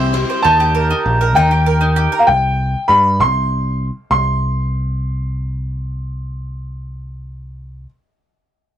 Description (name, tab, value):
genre	folk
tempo	66 BPM (dotted quarters)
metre	6/8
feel	straight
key	unclear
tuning	A4 = 440 Hz
part	warm upright piano	melody	0.0-7.9 s	F5 to C6	-16 LUFS	equal	none
part	picked twelve-string acoustic guitar	accompaniment	0.0-0.5 s	C3 to C5	-21 LUFS	left 5 dB	none
part	mandolin	arpeggios	0.0-2.3 s	Eb4 to C5	-18 LUFS	right 3 dB	none
part	picked electric bass	bass	0.0-7.9 s	Bb1 to G2	-18 LUFS	equal	none
room	moderate booth ambience, RT60 0.2 s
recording	rough rehearsal-room recording, warm saturation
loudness	-13 LUFS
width	side -10 dB against mid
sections	0.0-4.1 A section; 4.1-7.8 B section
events	none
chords	0.4 Eb; 2.3 C5; 4.1 N.C.